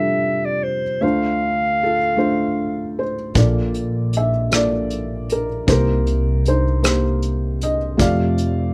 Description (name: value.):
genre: folk.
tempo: 52 BPM (dotted quarters).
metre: 6/8.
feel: straight.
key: unclear.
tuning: A4 = 440 Hz.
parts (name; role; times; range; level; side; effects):
felt-muted upright piano; melody; 0.0-8.7 s; F1 to F5; -22 LUFS; equal; none.
warm clarinet; second line; 0.0-3.0 s; C5 to F5; -23 LUFS; equal; none.
upright bass; bass; 3.4-8.7 s; Bb1 to F2; -24 LUFS; equal; none.
vintage brush drum kit; drums; 3.4-8.6 s; hi-hat, kick drum, rim click; -23 LUFS; equal; none.
room: light reverb.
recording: none.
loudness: -19 LUFS.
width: mono.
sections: 0.0-3.4 A section; 3.4-8.7 B section.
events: clarinet solo 0.0-3.4.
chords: 0.0 F69; 1.0 Dm7; 3.4 Bbmaj7; 5.7 Cm7; 8.0 F69.